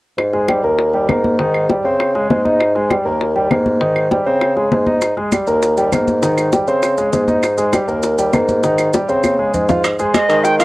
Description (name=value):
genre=Afro-Cuban jazz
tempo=199 BPM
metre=4/4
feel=straight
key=Ab major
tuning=A4 = 438 Hz
part: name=mellow bassoon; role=bass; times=0.2-10.6 s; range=Eb2 to Eb3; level=-16 LUFS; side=equal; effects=none
part: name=bongos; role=percussion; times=0.2-10.6 s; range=none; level=-21 LUFS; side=left 4 dB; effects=none
part: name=claves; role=percussion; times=0.2-10.3 s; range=none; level=-25 LUFS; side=right 3 dB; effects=none
part: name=congas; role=percussion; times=0.2-10.6 s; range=none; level=-22 LUFS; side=left 1 dB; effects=none
part: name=clear concert grand piano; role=accompaniment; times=0.3-10.6 s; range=Eb3 to F5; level=-18 LUFS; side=equal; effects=cassette tape
part: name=maracas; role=percussion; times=5.0-10.6 s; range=none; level=-31 LUFS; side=right 5 dB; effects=none
part: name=timbales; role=percussion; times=9.8-10.6 s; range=none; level=-23 LUFS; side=right 4 dB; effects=none
part: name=bright reedy silver concert flute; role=melody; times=10.1-10.6 s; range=Eb5 to G5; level=-14 LUFS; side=right 2 dB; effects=cassette tape
room=light reverb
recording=home recording on cassette, lossy compression artefacts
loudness=-13 LUFS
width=side -19 dB against mid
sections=0.2-9.8 A section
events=drum fill 8.9-9.8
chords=0.2 Eb; 1.4 Abmaj7; 2.0 Db5; 2.6 Eb; 3.8 Abmaj7; 4.4 Db5; 5.0 Eb; 6.2 Abmaj7; 6.8 Db5; 7.4 Eb; 8.6 Abmaj7; 9.2 Dbmaj7; 9.8 Ab